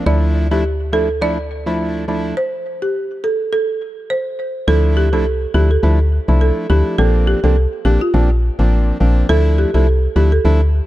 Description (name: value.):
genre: dancehall.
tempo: 104 BPM.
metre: 4/4.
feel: swing 56% on 16ths.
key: D minor.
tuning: A4 = 439 Hz.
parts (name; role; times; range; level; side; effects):
percussive organ stab; accompaniment; 0.0-10.6 s; F3 to E4; -20 LUFS; equal; chorus.
woody FM bass; bass; 0.0-10.8 s; A1 to D2; -14 LUFS; equal; none.
folk marimba with medium mallets; melody; 0.1-10.4 s; F4 to D5; -20 LUFS; right 2 dB; tape echo.
room: light reverb.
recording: dark, warm production.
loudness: -14 LUFS.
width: side -15 dB against mid.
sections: 0.0-4.7 A section; 4.7-10.9 B section.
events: stop 2.4-4.7.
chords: 0.1 Dmadd9; 2.4 N.C.; 4.7 Dmadd9; 7.0 Bbadd9; 9.3 Dmadd9.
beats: | 0.06 0.64 1.22 1.79 | 2.37 2.95 3.52 4.10 | 4.68 5.26 5.83 6.41 | 6.99 7.56 8.14 8.72 | 9.29 9.87 10.45.